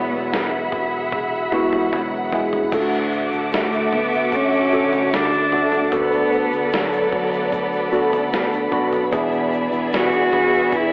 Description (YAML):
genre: pop ballad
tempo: 75 BPM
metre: 4/4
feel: straight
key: unclear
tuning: A4 = 439 Hz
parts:
  - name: warm cello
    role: melody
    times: 0.0-10.9 s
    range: F#3 to F#4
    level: -24 LUFS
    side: equal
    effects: cassette tape
  - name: tine electric piano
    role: accompaniment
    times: 0.0-10.9 s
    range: A2 to B4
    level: -26 LUFS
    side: equal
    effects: phaser, cassette tape
  - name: warm symphonic string section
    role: sustained chords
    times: 0.0-10.9 s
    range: G#4 to D6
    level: -28 LUFS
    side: equal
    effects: cassette tape
  - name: nylon-string guitar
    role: arpeggios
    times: 0.0-10.9 s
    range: E2 to F#4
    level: -31 LUFS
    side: equal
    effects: none
  - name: fretless electric bass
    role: bass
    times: 0.0-10.9 s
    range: E1 to E2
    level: -34 LUFS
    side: equal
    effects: lush chorus
  - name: dusty soul sampler-style drum kit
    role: drums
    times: 0.3-10.9 s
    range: crash cymbal, kick drum, snare drum, toms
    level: -29 LUFS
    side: equal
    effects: cassette tape
  - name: dark studio violin section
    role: second line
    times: 2.7-10.9 s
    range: A3 to E5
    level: -27 LUFS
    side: equal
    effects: cassette tape
  - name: tube shaker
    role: percussion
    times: 2.7-10.9 s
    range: none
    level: -56 LUFS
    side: equal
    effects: none
room: moderate spring reverb, RT60 2.6 s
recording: home recording on cassette, telephone sound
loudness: -20 LUFS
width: mono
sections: 0.0-10.9 A section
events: drum fill 1.1-2.7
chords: 0.0 Eadd9; 2.7 D; 5.9 Bm7/D; 9.1 E7